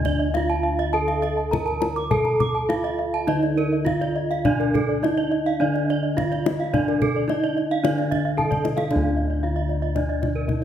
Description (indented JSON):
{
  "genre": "Balinese gamelan",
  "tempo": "102-114 BPM",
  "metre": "4/4",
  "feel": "straight",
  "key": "D pelog",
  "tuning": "A4 = 441 Hz",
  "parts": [
    { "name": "gamelan-type bronze metallophone", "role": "melody", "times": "0.0-10.6 s", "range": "D4 to Bb4-20c", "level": "-25 LUFS", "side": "right 3 dB", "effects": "none" },
    { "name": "gamelan-type bronze metallophone", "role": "arpeggios", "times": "0.0-10.6 s", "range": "Bb4-20c to Bb5-20c", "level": "-28 LUFS", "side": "left 3 dB", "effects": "none" },
    { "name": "gamelan-type bossed gongs", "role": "bass", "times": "0.0-10.6 s", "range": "D2 to A4-30c", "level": "-26 LUFS", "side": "left 1 dB", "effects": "none" },
    { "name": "kendang", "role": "percussion", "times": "0.0-10.6 s", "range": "none", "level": "-27 LUFS", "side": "left 3 dB", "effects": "none" },
    { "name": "gamelan-type bronze metallophone", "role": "arpeggios", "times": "0.1-10.6 s", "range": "A4-30c to D6", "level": "-29 LUFS", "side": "right 4 dB", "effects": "none" }
  ],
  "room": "wet recital hall reverb, RT60 1.2 s",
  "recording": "heard from further back in the room",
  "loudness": "-20 LUFS",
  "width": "side -10 dB against mid",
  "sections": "0.0-8.9 A section; 8.9-10.6 B section",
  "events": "drum fill 8.4-8.9",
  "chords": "none",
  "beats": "0.34 0.93 1.52 | 2.11 2.70 3.29 3.87 | 4.46 5.05 5.62 6.19 | 6.75 7.30 7.84 8.38 | 8.91 9.43 9.96 10.48"
}